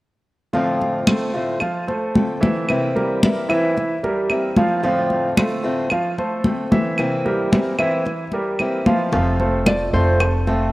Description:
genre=latin, Cuban son and guajira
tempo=112 BPM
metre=4/4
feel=straight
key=F major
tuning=A4 = 440 Hz
part: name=fingerpicked acoustic archtop guitar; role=accompaniment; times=0.5-10.7 s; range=F2 to F4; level=-23 LUFS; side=left 1 dB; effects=cassette tape
part: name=clear concert grand piano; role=arpeggios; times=0.5-10.7 s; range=E3 to F5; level=-22 LUFS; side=right 1 dB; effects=cassette tape
part: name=congas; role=percussion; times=0.5-10.7 s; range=none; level=-20 LUFS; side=left 1 dB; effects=none
part: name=claves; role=percussion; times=1.1-10.5 s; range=none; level=-28 LUFS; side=right 1 dB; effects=none
part: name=upright bass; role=bass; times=9.1-10.7 s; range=F1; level=-19 LUFS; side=equal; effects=none
part: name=bongos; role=percussion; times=9.1-10.5 s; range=none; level=-30 LUFS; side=left 3 dB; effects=none
part: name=nylon-string guitar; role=melody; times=9.7-10.7 s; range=C5 to D5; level=-23 LUFS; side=right 1 dB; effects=cassette tape
room=moderate lush hall reverb, RT60 2.3 s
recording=home recording on cassette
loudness=-17 LUFS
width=side -18 dB against mid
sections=0.5-9.1 A section; 9.1-10.7 B section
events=none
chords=0.5 F6; 2.7 C7; 4.8 F6; 7.0 C7; 9.1 F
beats=| 0.54 1.07 1.61 2.15 | 2.69 3.22 3.76 4.30 | 4.83 5.37 5.91 6.45 | 6.98 7.52 8.06 8.59 | 9.13 9.67 10.20

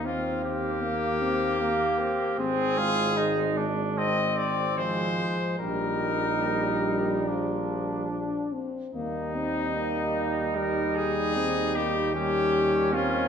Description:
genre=classical, brass quintet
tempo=75 BPM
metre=4/4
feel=rubato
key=Eb major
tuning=A4 = 439 Hz
part: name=mellow trumpet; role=melody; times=0.0-13.3 s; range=Eb4 to Eb5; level=-28 LUFS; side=left 5 dB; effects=none
part: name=clear flugelhorn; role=second line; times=0.0-13.3 s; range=Bb3 to F4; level=-31 LUFS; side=right 7 dB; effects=none
part: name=bright trombone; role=accompaniment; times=0.0-13.3 s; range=Eb3 to C4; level=-34 LUFS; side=right 4 dB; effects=none
part: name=dark French horn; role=accompaniment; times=0.0-13.3 s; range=F3 to D4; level=-31 LUFS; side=left 3 dB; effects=none
part: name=mellow tuba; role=bass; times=0.0-13.3 s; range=Ab1 to Eb2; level=-32 LUFS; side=right 4 dB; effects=none
room=wet recital hall reverb, RT60 1.5 s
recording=minimal, uncompressed stereo recording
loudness=-24 LUFS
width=side -7 dB against mid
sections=0.0-13.3 A section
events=none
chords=0.0 Eb; 2.4 Ab; 4.0 Fm/Ab; 5.6 Eb/Bb; 7.3 Bb; 8.9 Eb; 12.2 Eb7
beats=0.05 0.83 1.61 | 2.39 3.18 3.97 4.78 | 5.59 6.44 7.28 8.11 | 8.94 9.75 10.55 11.36 | 12.15 12.94

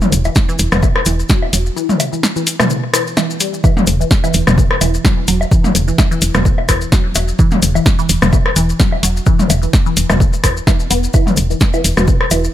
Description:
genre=minimal techno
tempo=128 BPM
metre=4/4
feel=swing 55% on 16ths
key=unclear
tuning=A4 = 440 Hz
part: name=maracas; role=percussion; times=0.0-12.5 s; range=none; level=-24 LUFS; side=left 5 dB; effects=none
part: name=techno drum kit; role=percussion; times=0.0-12.4 s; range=rim click, toms, woodblock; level=-17 LUFS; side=left 2 dB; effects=none
part: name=woody FM bass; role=bass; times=0.1-12.5 s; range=E1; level=-16 LUFS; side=equal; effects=sidechain pumping
part: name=punchy analog drum machine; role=drums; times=0.1-12.4 s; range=hi-hat, snare drum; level=-18 LUFS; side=equal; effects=none
part: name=resonant blip pluck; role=riff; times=0.3-12.3 s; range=B2 to B3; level=-20 LUFS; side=equal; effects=phaser, sidechain pumping, tape echo
part: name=electronic kick drum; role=drums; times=0.4-12.2 s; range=none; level=-13 LUFS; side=equal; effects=none
room=digital ambience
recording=none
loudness=-11 LUFS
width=side -12 dB against mid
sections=0.0-12.5 A section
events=none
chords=none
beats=0.36 0.83 1.30 | 1.76 2.23 2.70 3.17 | 3.64 4.11 4.58 5.05 | 5.51 5.98 6.45 6.92 | 7.39 7.86 8.33 8.80 | 9.27 9.73 10.20 10.67 | 11.14 11.61 12.08

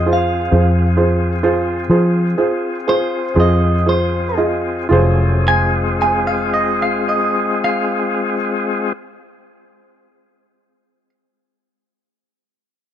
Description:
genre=slow blues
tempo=37-45 BPM (dotted quarters)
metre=12/8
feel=straight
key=F minor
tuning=A4 = 440 Hz
part: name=clean electric guitar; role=second line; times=0.0-11.1 s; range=C5 to Ab5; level=-19 LUFS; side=right 1 dB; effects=none
part: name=tonewheel organ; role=sustained chords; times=0.0-8.9 s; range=Gb3 to Ab4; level=-21 LUFS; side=left 3 dB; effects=overdrive, fast rotary speaker
part: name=vintage muted fingered electric bass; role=bass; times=0.0-8.4 s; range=F1 to F3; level=-16 LUFS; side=equal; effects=none
part: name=warm baby grand piano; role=accompaniment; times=0.1-8.4 s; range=F4 to Eb5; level=-19 LUFS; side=right 2 dB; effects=none
room=digital ambience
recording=dry, close 1970s-style studio recording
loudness=-14 LUFS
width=side -10 dB against mid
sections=0.0-4.9 A section; 4.9-11.4 B section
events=slowing down 0.0-4.9; clean electric guitar solo 0.0-4.9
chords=0.0 Fm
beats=0.53 1.91 3.37 | 4.93 6.54 8.16 9.77

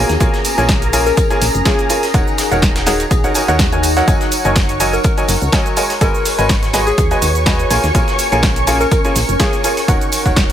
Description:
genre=piano house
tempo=124 BPM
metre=4/4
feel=swing 54% on 16ths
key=unclear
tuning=A4 = 438 Hz
part: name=analog string pad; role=sustained chords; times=0.0-10.5 s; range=G#4 to C#6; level=-23 LUFS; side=left 1 dB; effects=ensemble chorus, sidechain pumping
part: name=bright upright piano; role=riff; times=0.0-10.5 s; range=D#3 to G#5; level=-18 LUFS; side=equal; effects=sidechain pumping, ping-pong delay
part: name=solid FM bass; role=bass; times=0.0-10.5 s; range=D#1 to D#2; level=-19 LUFS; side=equal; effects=sidechain pumping
part: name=warbly tape-like pad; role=texture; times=0.0-10.5 s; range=C#4 to G#5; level=-23 LUFS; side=left 1 dB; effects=chorus, built-in reverb, sidechain pumping
part: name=breakbeat sampler-style drum kit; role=drums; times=0.1-10.5 s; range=hi-hat, snare drum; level=-27 LUFS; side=equal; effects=overdrive, high-pass filter on hats, studio reverb, high-pass filter on snare, high-pass filter on room
part: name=punchy analog drum machine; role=drums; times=0.1-10.5 s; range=cabasa, hi-hat, snare drum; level=-20 LUFS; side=right 1 dB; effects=overdrive, studio reverb
part: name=tambourine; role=percussion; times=0.1-10.5 s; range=none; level=-29 LUFS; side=equal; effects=none
part: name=electronic kick drum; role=drums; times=0.2-10.5 s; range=none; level=-16 LUFS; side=equal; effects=overdrive, studio reverb
part: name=soft struck synth lead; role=melody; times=1.1-9.5 s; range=G#4 to A#4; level=-21 LUFS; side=left 2 dB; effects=chorus, ping-pong delay
room=little or no reverb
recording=none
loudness=-12 LUFS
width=side -10 dB against mid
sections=0.0-10.5 A section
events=none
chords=0.0 A#m7; 2.1 D#m7; 4.1 F#69; 6.0 G#m7; 7.7 A#m7; 9.9 D#m7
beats=| 0.21 0.69 1.17 1.66 | 2.14 2.62 3.11 3.59 | 4.08 4.56 5.04 5.53 | 6.01 6.50 6.98 7.46 | 7.95 8.43 8.91 9.40 | 9.88 10.37

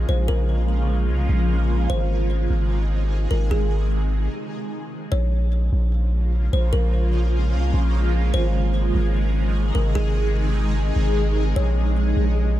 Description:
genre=hip hop, atmospheric cloud-rap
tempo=149 BPM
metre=4/4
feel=half-time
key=Bb minor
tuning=A4 = 440 Hz
part: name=shimmering ambient pad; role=sustained chords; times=0.0-12.6 s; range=C3 to Ab4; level=-26 LUFS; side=equal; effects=chorus, built-in reverb, phaser
part: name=long sustained 808-style bass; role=bass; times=0.0-12.6 s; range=Ab1 to C2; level=-20 LUFS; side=equal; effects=none
part: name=kalimba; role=melody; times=0.1-12.3 s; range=Ab4 to Db5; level=-32 LUFS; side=left 1 dB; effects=digital delay
room=small room ambience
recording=dark, warm production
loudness=-19 LUFS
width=side -14 dB against mid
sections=0.0-5.1 A section; 5.1-12.6 B section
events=stop 4.3-5.1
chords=0.0 Bbm7; 1.9 Ab; 5.1 Bbm7; 8.3 Ab; 11.6 Bbm7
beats=| 0.29 0.69 1.09 1.50 | 1.90 2.30 2.70 3.11 | 3.51 3.91 4.32 4.72 | 5.12 5.52 5.93 6.33 | 6.73 7.13 7.54 7.94 | 8.34 8.74 9.15 9.55 | 9.95 10.36 10.76 11.16 | 11.56 11.97 12.37

